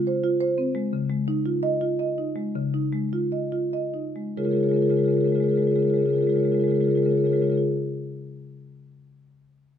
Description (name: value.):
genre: classical, contemporary piece for solo marimba.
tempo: 91-118 BPM.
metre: 3/4.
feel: straight.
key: Db major.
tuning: A4 = 440 Hz.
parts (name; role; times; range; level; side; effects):
marimba with soft mallets; solo; 0.0-7.6 s; Db3 to Eb5; -22 LUFS; equal; none.
room: moderate large studio reverb, RT60 1.2 s.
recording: none.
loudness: -21 LUFS.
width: side -9 dB against mid.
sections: 0.0-4.4 A section; 4.4-8.3 B section.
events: slowing down 0.2-4.4.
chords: 0.0 Dbmaj7; 0.9 Dbadd9; 4.4 Db6.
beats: 0.41 | 0.93 1.45 1.99 | 2.54 3.12 3.72 | 4.37 5.02 5.67 | 6.32 6.97.